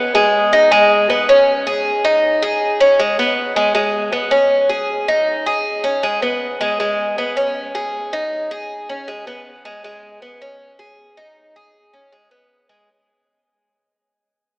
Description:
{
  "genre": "latin",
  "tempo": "158 BPM",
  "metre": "4/4",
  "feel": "straight",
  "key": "G# minor",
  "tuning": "A4 = 440 Hz",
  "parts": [
    { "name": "Cuban tres", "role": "solo", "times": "0.0-12.9 s", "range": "G#3 to G#4", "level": "-14 LUFS", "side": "equal", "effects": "none" }
  ],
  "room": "wet cathedral reverb, RT60 4.7 s",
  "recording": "recorded in a church or concert hall, AM radio sound",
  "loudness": "-13 LUFS",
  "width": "side -32 dB against mid",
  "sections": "0.7-12.9 A section",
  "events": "fade-out 0.7-12.9",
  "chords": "none",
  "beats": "0.34 | 0.71 1.09 1.48 1.85 | 2.23 2.61 2.99 3.37 | 3.75 4.13 4.51 4.89 | 5.27 5.65 6.03 6.42 | 6.79 7.18 7.56 7.94 | 8.32 8.70 9.08 9.46 | 9.84 10.22 10.61 10.99 | 11.37 11.75 12.13 12.51"
}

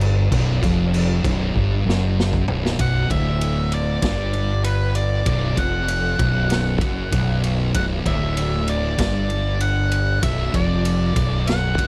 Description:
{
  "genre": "stoner and doom metal",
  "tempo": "97 BPM",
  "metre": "4/4",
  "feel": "straight",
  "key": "unclear",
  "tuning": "A4 = 440 Hz",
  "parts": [
    { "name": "thick fuzz guitar", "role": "riff", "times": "0.0-11.9 s", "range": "B1 to G2", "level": "-26 LUFS", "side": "equal", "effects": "distortion" },
    { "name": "thick fuzz guitar", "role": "riff", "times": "0.0-11.9 s", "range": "B1 to G2", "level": "-27 LUFS", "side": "equal", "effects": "distortion" },
    { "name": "fuzz fingered electric bass", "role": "bass", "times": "0.0-11.9 s", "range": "B0 to G1", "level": "-26 LUFS", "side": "equal", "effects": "overdrive" },
    { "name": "raw garage drum kit", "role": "drums", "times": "0.0-11.9 s", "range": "crash cymbal, kick drum, ride cymbal, snare drum, toms", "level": "-28 LUFS", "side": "equal", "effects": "none" },
    { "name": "octave-fuzz lead guitar", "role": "melody", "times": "2.8-11.9 s", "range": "B4 to F#5", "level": "-28 LUFS", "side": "equal", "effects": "distortion" }
  ],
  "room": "small room ambience",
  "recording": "dry, close 1970s-style studio recording",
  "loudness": "-20 LUFS",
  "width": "mono",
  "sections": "0.0-2.8 A section; 2.8-11.9 B section",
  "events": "drum fill 1.6-2.8",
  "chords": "0.0 B5; 2.8 Bm",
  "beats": "| 0.32 0.94 1.55 2.17 | 2.79 3.41 4.03 4.65 | 5.27 5.89 6.51 7.13 | 7.75 8.37 8.99 9.61 | 10.23 10.86 11.48"
}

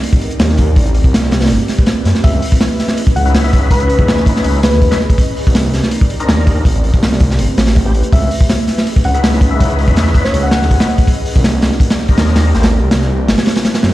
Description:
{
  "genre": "drum and bass, jungle",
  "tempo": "163 BPM",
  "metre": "4/4",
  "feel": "straight",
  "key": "unclear",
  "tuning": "A4 = 440 Hz",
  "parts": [
    { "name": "ethereal airy pad", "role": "sustained chords", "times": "0.0-13.9 s", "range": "E3 to D#5", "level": "-22 LUFS", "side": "right 1 dB", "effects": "ensemble chorus, built-in reverb" },
    { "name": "crunchy breakbeat drum kit", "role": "drums", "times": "0.0-13.9 s", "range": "hi-hat, kick drum, snare drum", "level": "-12 LUFS", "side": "equal", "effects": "none" },
    { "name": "detuned saw bass", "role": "bass", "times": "0.4-13.9 s", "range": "G1 to F#2", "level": "-14 LUFS", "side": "equal", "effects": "none" },
    { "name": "soft struck synth lead", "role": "melody", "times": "2.2-5.0, 8.1-10.9 s", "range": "B4 to F#5", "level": "-22 LUFS", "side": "left 2 dB", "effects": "chorus, dub echo" },
    { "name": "overdriven tonewheel organ", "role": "stabs", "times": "3.3-12.7 s", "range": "A3 to B4", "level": "-24 LUFS", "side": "left 3 dB", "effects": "chorus vibrato, slow rotary speaker, dub echo" }
  ],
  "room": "light reverb, small room ambience",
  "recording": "played on a big sound system in a bare room, large studio reverb",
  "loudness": "-10 LUFS",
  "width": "side -16 dB against mid",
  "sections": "0.0-13.9 A section",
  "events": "none",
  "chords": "0.0 Cm9; 0.8 Am9; 2.2 C#m9; 5.2 Cm9; 6.7 Am9; 8.1 C#m9; 11.1 Cm9; 12.5 Am9",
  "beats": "0.03 0.40 | 0.77 1.13 1.50 1.87 | 2.24 2.61 2.98 3.34 | 3.71 4.08 4.45 4.82 | 5.18 5.55 5.92 6.29 | 6.66 7.02 7.39 7.76 | 8.13 8.50 8.86 9.23 | 9.60 9.97 10.34 10.71 | 11.07 11.44 11.81 12.18 | 12.54 12.91 13.28 13.65"
}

